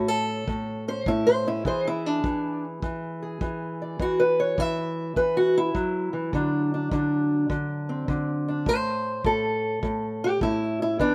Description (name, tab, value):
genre	acoustic country blues, solo or duo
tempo	103 BPM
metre	4/4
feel	swing 67% on 8ths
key	unclear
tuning	A4 = 440 Hz
part	fingerpicked steel-string acoustic guitar	melody	0.0-11.1 s	A2 to E5	-26 LUFS	equal	none
part	kick drum	drums	0.5-11.1 s	none	-34 LUFS	equal	none
room	little or no reverb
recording	recorded outdoors, with no room sound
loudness	-26 LUFS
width	mono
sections	0.0-11.1 A section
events	steel-string acoustic guitar solo 0.0-11.1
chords	0.0 A; 1.7 E; 6.3 D7; 8.7 N.C.